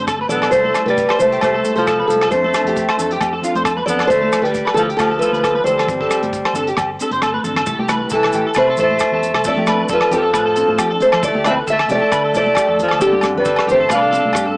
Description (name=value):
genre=highlife guitar band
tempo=134 BPM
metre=4/4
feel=swing 55% on 16ths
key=C major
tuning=A4 = 437 Hz
part: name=fingerpicked steel-string acoustic guitar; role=melody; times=0.0-14.5 s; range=G4 to F5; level=-16 LUFS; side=equal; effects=cassette tape
part: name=breathy alto saxophone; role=second line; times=0.0-14.6 s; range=D3 to D4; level=-21 LUFS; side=equal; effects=none
part: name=mellow electric guitar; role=accompaniment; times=0.0-14.6 s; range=E3 to A4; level=-28 LUFS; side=left 1 dB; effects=none
part: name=electric guitar at the edge of break-up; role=arpeggios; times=0.0-14.6 s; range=F4 to C5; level=-21 LUFS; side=right 1 dB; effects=ensemble chorus
part: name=fingered electric bass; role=bass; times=0.0-14.6 s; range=G1 to F3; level=-29 LUFS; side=equal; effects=none
part: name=damped 70s drum kit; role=drums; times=0.1-14.5 s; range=hi-hat, kick drum, rim click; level=-25 LUFS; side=equal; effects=cassette tape
part: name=agogo bells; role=percussion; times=0.1-14.5 s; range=none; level=-23 LUFS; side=left 1 dB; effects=none
part: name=maracas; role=percussion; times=0.1-14.5 s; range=none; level=-33 LUFS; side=right 1 dB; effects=none
part: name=congas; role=percussion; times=0.2-14.6 s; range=none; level=-28 LUFS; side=equal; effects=none
room=moderate spring reverb, RT60 1.2 s, small room ambience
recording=home recording on cassette, small speaker sound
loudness=-13 LUFS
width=side -28 dB against mid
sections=0.0-7.7 A section; 7.7-14.6 B section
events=drum fill 7.2-7.7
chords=0.0 G7sus4; 0.5 C6; 2.3 F6; 4.1 Dmadd9; 5.9 G7sus4; 7.7 C6; 9.5 F6; 11.2 Dmadd9; 13.0 G7sus4